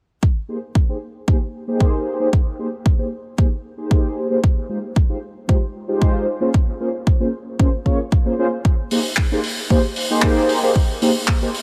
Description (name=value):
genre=nu-disco, nu disco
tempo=114 BPM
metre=4/4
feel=straight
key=Ab major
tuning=A4 = 440 Hz
part: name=electronic kick drum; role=drums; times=0.2-11.4 s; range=none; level=-19 LUFS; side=equal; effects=overdrive
part: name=mellow synth brass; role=accompaniment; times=0.5-11.5 s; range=Ab3 to Db5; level=-23 LUFS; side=equal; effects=chorus, dub echo
part: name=damped 70s drum kit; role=drums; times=8.9-11.6 s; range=handclaps, hi-hat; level=-25 LUFS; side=equal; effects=none
room=light reverb, small room ambience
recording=none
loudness=-19 LUFS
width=mono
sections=0.2-11.6 A section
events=filter sweep on analog polysynth 0.2-11.6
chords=0.2 Abmaj7; 4.4 Fm9; 6.3 Bbm7; 8.6 Abmaj7